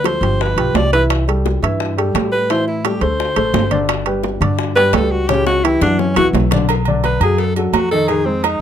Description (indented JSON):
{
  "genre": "Afro-Cuban jazz",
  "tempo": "172 BPM",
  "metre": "4/4",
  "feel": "straight",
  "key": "unclear",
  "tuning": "A4 = 439 Hz",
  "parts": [
    { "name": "clear alto saxophone", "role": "melody", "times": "0.0-8.6 s", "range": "C4 to D5", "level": "-17 LUFS", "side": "left 1 dB", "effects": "none" },
    { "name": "dark baby grand piano", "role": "accompaniment", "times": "0.0-8.5 s", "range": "C#3 to E5", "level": "-20 LUFS", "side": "equal", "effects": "none" },
    { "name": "upright bass", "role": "bass", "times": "0.0-8.6 s", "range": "G1 to A2", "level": "-19 LUFS", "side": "equal", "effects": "none" },
    { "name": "bongos and cowbell", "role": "percussion", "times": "0.0-8.6 s", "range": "none", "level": "-25 LUFS", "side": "left 8 dB", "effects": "none" },
    { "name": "timbales and agogo bells", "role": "percussion", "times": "0.1-8.6 s", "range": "none", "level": "-21 LUFS", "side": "right 8 dB", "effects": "none" }
  ],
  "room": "light reverb",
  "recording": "close, detailed microphones",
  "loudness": "-13 LUFS",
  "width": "side -9 dB against mid",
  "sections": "0.0-6.7 A section; 6.7-8.6 A section",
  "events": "alto saxophone solo 0.0-8.6; drum fill 5.3-6.7",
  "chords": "0.4 G7; 1.1 C6; 2.5 Am7; 3.2 D5; 3.9 G; 5.3 C#dim; 6.0 F#5; 6.7 Bm7; 8.1 Fm7"
}